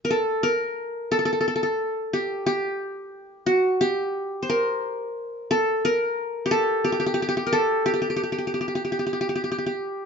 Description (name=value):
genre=arabic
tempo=89 BPM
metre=4/4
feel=straight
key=G maqam nahawand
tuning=A4 = 442 Hz
part: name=qanun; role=solo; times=0.0-10.1 s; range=F#4 to C5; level=-22 LUFS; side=equal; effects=none
room=moderate stone room reverb, RT60 0.9 s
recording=band playing live in one room, nothing above 7.6 kHz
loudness=-22 LUFS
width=side -6 dB against mid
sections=0.0-10.1 A section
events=none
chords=none